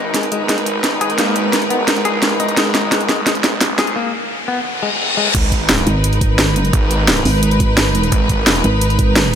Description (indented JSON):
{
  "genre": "dark technical drum and bass",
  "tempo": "173 BPM",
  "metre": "4/4",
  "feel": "straight",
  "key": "G# minor",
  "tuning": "A4 = 441 Hz",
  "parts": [
    { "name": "bright symphonic string section", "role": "sustained chords", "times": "0.0-9.4 s", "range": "G#3 to B4", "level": "-19 LUFS", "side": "equal", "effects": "sidechain pumping" },
    { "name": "clean electric guitar", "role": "arpeggios", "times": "0.0-5.3 s", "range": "G#3 to G#4", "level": "-22 LUFS", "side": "left 4 dB", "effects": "spring reverb, sidechain pumping, dub echo" },
    { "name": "snarling distorted saw bass", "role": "bass", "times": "0.0-8.6 s", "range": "G#1 to A#1", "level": "-22 LUFS", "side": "equal", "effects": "distortion, tube saturation, sidechain pumping, high-pass filter" },
    { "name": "riser, reverse cymbal and sub drop", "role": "sound effects", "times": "1.8-6.7 s", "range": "none", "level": "-22 LUFS", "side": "left 2 dB", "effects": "none" },
    { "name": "drum and bass drum kit", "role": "drums", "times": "0.1-9.2 s", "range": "crash cymbal, hi-hat, snare drum", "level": "-17 LUFS", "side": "right 1 dB", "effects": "overdrive" },
    { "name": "electronic kick drum", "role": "drums", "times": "5.3-9.1 s", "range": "none", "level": "-16 LUFS", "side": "right 1 dB", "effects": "overdrive" },
    { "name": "pulsing pluck wobble bass", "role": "bass", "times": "5.9-9.4 s", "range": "G#1", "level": "-16 LUFS", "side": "right 1 dB", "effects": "chorus, tube saturation" }
  ],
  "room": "moderate lush hall reverb, RT60 1.6 s",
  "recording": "none",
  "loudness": "-13 LUFS",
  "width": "side -8 dB against mid",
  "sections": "0.0-5.3 A section; 5.3-9.4 B section",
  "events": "build-up 0.0-5.3; drum fill 0.0-4.0; riser 1.8-5.3; break 4.0-5.3; reverse cymbal 4.7-5.3; drop 5.3-9.4; impact 5.3-6.7",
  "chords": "0.0 G#m"
}